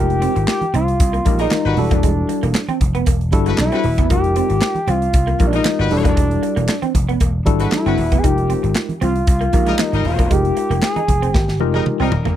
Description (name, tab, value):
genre	early-eighties boogie funk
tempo	116 BPM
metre	4/4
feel	straight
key	unclear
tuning	A4 = 437 Hz
part	expressive synth lead	melody	0.0-11.6 s	D4 to Ab4	-21 LUFS	left 1 dB	chorus, tape echo
part	mellow tine electric piano	accompaniment	0.0-12.1 s	G3 to Bb4	-22 LUFS	left 3 dB	overdrive, medium stereo tremolo
part	electric guitar through a small old amp	riff	0.0-12.3 s	Ab3 to Eb4	-25 LUFS	right 7 dB	analog chorus
part	vintage slap bass	bass	0.0-12.3 s	Eb1 to C2	-19 LUFS	equal	none
part	modern studio drum kit	drums	0.1-12.4 s	handclaps, hi-hat, kick drum, snare drum, toms	-18 LUFS	equal	none
part	congas	percussion	0.2-12.4 s	none	-28 LUFS	right 3 dB	none
part	warm horn section	second line	1.4-12.4 s	G3 to B4	-24 LUFS	left 7 dB	none
room	little or no reverb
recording	dry, close 1970s-style studio recording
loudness	-14 LUFS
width	side -11 dB against mid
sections	0.0-12.4 A section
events	drum fill 11.3-12.4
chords	0.0 Fm11; 1.8 Em11; 4.1 Fm11; 5.9 Em11; 8.2 Fm11